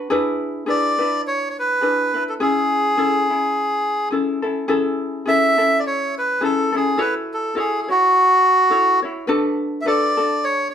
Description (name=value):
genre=hawaiian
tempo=105 BPM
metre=4/4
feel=swing 56% on 8ths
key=A major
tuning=A4 = 441 Hz
part: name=ukulele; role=accompaniment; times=0.0-10.7 s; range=C#4 to C#5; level=-22 LUFS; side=left 2 dB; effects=none
part: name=melodica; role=melody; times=0.7-10.7 s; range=F#4 to E5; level=-17 LUFS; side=equal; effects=plate reverb
room=moderate studio reverb, RT60 0.6 s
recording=none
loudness=-16 LUFS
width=side -8 dB against mid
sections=0.0-4.7 A section; 4.7-10.7 A section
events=none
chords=0.1 E7; 2.4 Amaj7; 7.0 F#m7; 9.3 Bm7